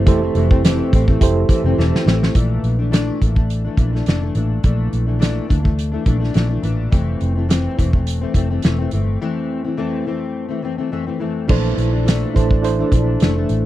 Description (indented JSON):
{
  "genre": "indie pop, bedroom pop",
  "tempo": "105 BPM",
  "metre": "4/4",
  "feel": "swing 55% on 16ths",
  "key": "unclear",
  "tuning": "A4 = 438 Hz",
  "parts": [
    { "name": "fingerpicked plugged-in steel-string acoustic guitar", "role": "accompaniment", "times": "0.0-13.7 s", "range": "F2 to D4", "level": "-22 LUFS", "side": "left 4 dB", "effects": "analog chorus, warbly pitch drift" },
    { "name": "reed electric piano", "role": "accompaniment", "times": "0.0-2.4, 11.5-13.7 s", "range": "D4 to C5", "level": "-21 LUFS", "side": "right 7 dB", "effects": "fast tremolo, cassette tape" },
    { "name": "vintage muted fingered electric bass", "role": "bass", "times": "0.0-13.7 s", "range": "E1 to D2", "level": "-19 LUFS", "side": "equal", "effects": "none" },
    { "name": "loose indie drum kit", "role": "drums", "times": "0.1-13.6 s", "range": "crash cymbal, hi-hat, kick drum, snare drum", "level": "-16 LUFS", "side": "equal", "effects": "none" }
  ],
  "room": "little or no reverb",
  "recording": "dry, close 1970s-style studio recording",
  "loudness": "-15 LUFS",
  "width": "side -14 dB against mid",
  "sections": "0.0-2.4 A section; 2.4-11.5 B section; 11.5-13.7 C section",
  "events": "drum fill 1.8-2.4; break 9.2-11.5",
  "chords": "0.0 Fmaj7; 2.4 Bbmaj7#11; 6.9 Fmaj7; 11.5 Bbmaj9#11",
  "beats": "| 0.06 0.64 1.21 1.78 | 2.35 2.92 3.49 4.07 | 4.64 5.21 5.78 6.35 | 6.92 7.50 8.07 8.64 | 9.21 9.78 10.36 10.93 | 11.50 12.07 12.64 13.21"
}